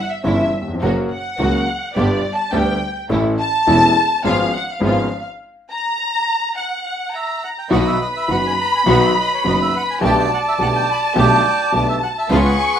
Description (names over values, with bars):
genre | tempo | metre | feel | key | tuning
tango | 105 BPM | 4/4 | rubato | unclear | A4 = 440 Hz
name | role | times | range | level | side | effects
warm studio violin section | second line | 0.0-12.8 s | D5 to C#6 | -19 LUFS | left 1 dB | none
warm concert grand piano | accompaniment | 0.2-12.5 s | E1 to A4 | -19 LUFS | left 1 dB | none
dark symphonic string section | stabs | 0.2-12.5 s | G3 to G4 | -24 LUFS | right 2 dB | none
clear double bass | bass | 0.3-12.5 s | E1 to D2 | -22 LUFS | right 1 dB | none
bandoneon | melody | 7.1-12.8 s | G#4 to B5 | -21 LUFS | right 4 dB | none
room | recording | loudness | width
wet studio reverb, RT60 0.7 s | rough home demo mix | -15 LUFS | side -9 dB against mid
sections
0.0-7.7 A section; 7.7-12.8 B section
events
violin section solo 0.0-7.7; stop 5.4-7.7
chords
0.0 C#dim/G; 0.8 F#; 2.0 G; 3.1 A; 4.3 C#7/G#; 5.4 N.C.; 7.7 B; 10.0 Gadd9/B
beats
0.25 | 0.83 1.40 1.96 2.54 | 3.11 3.68 4.25 4.83 | 5.40 5.97 6.55 7.13 | 7.71 8.29 8.87 9.44 | 10.02 10.59 11.16 11.73 | 12.31